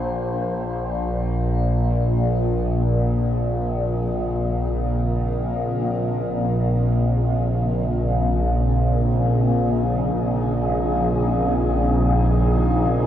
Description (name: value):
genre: dark ambient drone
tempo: free time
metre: none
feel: none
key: unclear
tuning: A4 = 445 Hz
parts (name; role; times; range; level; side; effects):
- overtone-sweeping drone; drone; 0.0-13.1 s; Bb1 to Bb2; -19 LUFS; equal; chorus, built-in reverb, phaser
- wind-like tuned noise texture; texture; 0.0-13.1 s; Ab4 to C5; -35 LUFS; left 2 dB; built-in reverb, shimmer reverb
- granular cloud pad; sustained chords; 2.7-13.1 s; Db3 to Eb5; -29 LUFS; equal; built-in reverb, shimmer reverb
room: wet huge ambient reverb, RT60 7.4 s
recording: dark, warm production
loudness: -19 LUFS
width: side -11 dB against mid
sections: 0.9-13.1 A section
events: fade-in on ambient pad 0.9-13.1; fade-in on synth texture 0.9-13.1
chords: 0.0 Bbsus2; 0.9 Dbadd9